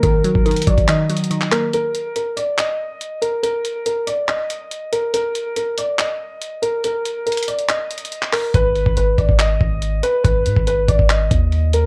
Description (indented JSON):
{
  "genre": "hip hop, trap",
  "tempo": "141 BPM",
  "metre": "4/4",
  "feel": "half-time",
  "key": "unclear",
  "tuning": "A4 = 440 Hz",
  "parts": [
    { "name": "dark grand piano", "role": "melody", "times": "0.0-11.9 s", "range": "Bb4 to Eb5", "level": "-22 LUFS", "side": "equal", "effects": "low-pass filter" },
    { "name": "glassy wavetable pluck", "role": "accompaniment", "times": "0.0-1.7 s", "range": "Eb3 to Bb3", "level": "-22 LUFS", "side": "equal", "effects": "chorus, low-pass filter" },
    { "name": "breakbeat sampler-style drum kit", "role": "drums", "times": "0.0-11.8 s", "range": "handclaps, hi-hat, kick drum", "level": "-22 LUFS", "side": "equal", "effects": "none" },
    { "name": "long sustained 808-style bass", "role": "bass", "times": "8.5-11.9 s", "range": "Ab1 to Ab2", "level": "-21 LUFS", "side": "equal", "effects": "none" }
  ],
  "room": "light reverb",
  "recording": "worn, warbling old tape, cassette tape, warbly pitch drift",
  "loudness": "-19 LUFS",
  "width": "mono",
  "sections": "0.0-1.7 A section; 1.7-11.9 B section",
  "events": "break 0.9-1.7, 1.7-8.5",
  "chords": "0.0 Ebm; 1.7 N.C.; 8.5 Abm",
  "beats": "| 0.03 0.46 0.88 1.31 | 1.73 2.16 2.58 3.01 | 3.44 3.86 4.29 4.71 | 5.14 5.56 5.99 6.42 | 6.84 7.27 7.69 8.12 | 8.54 8.97 9.39 9.82 | 10.24 10.67 11.10 11.52"
}